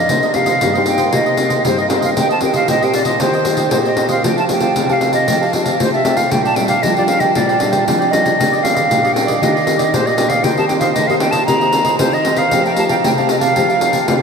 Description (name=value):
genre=samba and choro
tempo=116 BPM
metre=4/4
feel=straight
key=unclear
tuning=A4 = 440 Hz
part: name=hollow concert flute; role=melody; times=0.0-14.2 s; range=C5 to Bb5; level=-16 LUFS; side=right 1 dB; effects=ping-pong delay
part: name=cavaquinho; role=accompaniment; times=0.0-14.2 s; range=D4 to A5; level=-21 LUFS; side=right 4 dB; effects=none
part: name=nylon-string guitar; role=accompaniment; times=0.0-14.2 s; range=G2 to G4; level=-19 LUFS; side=left 2 dB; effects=ensemble chorus
part: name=pandeiro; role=percussion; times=0.1-14.2 s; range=none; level=-18 LUFS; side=left 2 dB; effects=none
room=wet huge ambient reverb, RT60 8.2 s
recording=dreamy mix soaked in reverb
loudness=-12 LUFS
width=side -6 dB against mid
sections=0.0-14.2 A section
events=none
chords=0.1 Cm7; 2.2 Eb6; 4.2 Fadd9; 6.3 Bb6; 8.4 Ebmaj7; 10.5 Cm7/Eb; 12.5 Fadd9